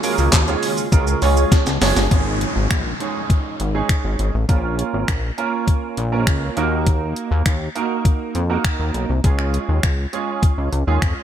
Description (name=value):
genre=dance-pop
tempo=101 BPM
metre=4/4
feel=straight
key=unclear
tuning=A4 = 440 Hz
part: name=clear grand piano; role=accompaniment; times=0.0-11.2 s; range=Ab3 to Db5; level=-23 LUFS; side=right 6 dB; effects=ensemble chorus, sidechain pumping
part: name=granular cloud pad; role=sustained chords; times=0.0-2.1 s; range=Db3 to F4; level=-29 LUFS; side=equal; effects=built-in reverb, wide subtle chorus, sidechain pumping
part: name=gated 80s digital drum machine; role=drums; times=0.0-11.2 s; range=finger snaps, handclaps, hi-hat, kick drum, shaker, snare drum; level=-18 LUFS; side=left 1 dB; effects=gated reverb, gated reverb snare
part: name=chorused synth bass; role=bass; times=0.2-11.1 s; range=Gb1 to F2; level=-20 LUFS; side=left 1 dB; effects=sidechain pumping
part: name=downlifter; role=sound effects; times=2.1-6.9 s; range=none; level=-30 LUFS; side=left 2 dB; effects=none
room=light reverb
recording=bright 1980s-style digital production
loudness=-17 LUFS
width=side -10 dB against mid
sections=0.0-2.1 A section; 2.1-11.2 B section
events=drop 0.0-2.1; drum fill 1.5-2.1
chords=0.0 Db; 2.1 Absus4; 4.5 Bbm; 6.6 Ebm; 9.2 Db